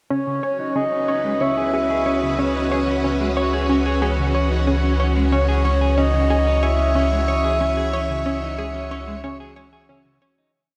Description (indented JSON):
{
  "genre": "ambient, sequencer-driven space music",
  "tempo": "92 BPM",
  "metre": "4/4",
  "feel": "straight",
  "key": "C# minor",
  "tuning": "A4 = 439 Hz",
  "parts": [
    { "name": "breathy flute-like synth lead", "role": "melody", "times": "0.1-9.9 s", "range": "C#5 to E5", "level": "-26 LUFS", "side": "equal", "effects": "chorus, delay" },
    { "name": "string machine, full ensemble", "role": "sustained chords", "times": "0.1-10.5 s", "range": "C#4 to C#5", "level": "-27 LUFS", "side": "equal", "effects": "ensemble chorus" },
    { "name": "clean electric guitar", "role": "arpeggios", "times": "0.1-10.5 s", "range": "C#3 to C#5", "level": "-30 LUFS", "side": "equal", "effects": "low-pass filter, delay" },
    { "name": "analog pluck", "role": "riff", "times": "0.1-10.5 s", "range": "C#4 to C#5", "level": "-30 LUFS", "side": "equal", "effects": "chorus, delay" },
    { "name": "round analog bass", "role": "bass", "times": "0.1-10.5 s", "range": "C#2", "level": "-25 LUFS", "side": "equal", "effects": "none" },
    { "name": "pulsing gated texture", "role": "texture", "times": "2.6-10.6 s", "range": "E3 to D#6", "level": "-37 LUFS", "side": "equal", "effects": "chorus, built-in reverb" }
  ],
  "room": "wet shimmer reverb, RT60 7.2 s",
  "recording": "none",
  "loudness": "-20 LUFS",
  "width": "mono",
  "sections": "0.1-10.5 A section",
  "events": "fade-in on synth texture 0.1-10.5; filter sweep on clean electric guitar 0.1-10.5; fade-out 7.1-10.5",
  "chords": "0.1 C#madd9",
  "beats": "| 0.11 0.76 1.41 2.06 | 2.72 3.37 4.02 4.67 | 5.33 5.98 6.63 7.28 | 7.93 8.59 9.24 9.89"
}